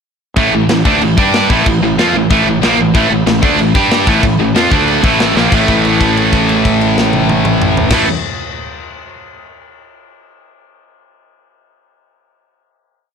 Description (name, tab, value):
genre	heavy metal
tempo	186 BPM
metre	4/4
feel	straight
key	A phrygian dominant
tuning	A4 = 439 Hz
part	distorted electric guitar	riff	0.4-8.1 s	A2 to G4	-14 LUFS	right 9 dB	overdrive
part	fuzz guitar	riff	0.4-8.1 s	A2 to G4	-18 LUFS	left 2 dB	distortion
part	tight distorted guitar	riff	0.4-8.1 s	A2 to G4	-17 LUFS	left 15 dB	distortion
part	fuzz fingered electric bass	bass	0.4-8.0 s	A1 to G2	-19 LUFS	left 1 dB	overdrive, transformer saturation
part	tight metal drum kit	drums	0.4-8.0 s	china cymbal, crash cymbal, kick drum, snare drum, toms	-16 LUFS	left 1 dB	soft clipping on kick
room	small room reverb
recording	blown-out, overdriven recording, overdrive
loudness	-9 LUFS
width	side -6 dB against mid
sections	0.4-5.5 riff; 5.5-8.1 final chord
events	drum fill 5.4; held note 5.5-7.9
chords	0.4 A5; 1.2 G5; 1.5 A5; 3.8 G5; 4.1 A5; 4.7 D5; 5.0 A5; 5.5 A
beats	| 0.36 0.69 1.01 1.34 | 1.66 1.98 2.30 2.63 | 2.95 3.27 3.59 3.91 | 4.24 4.56 4.88 5.20 | 5.52 5.84 6.17 6.49 | 6.81 7.13 7.46 7.78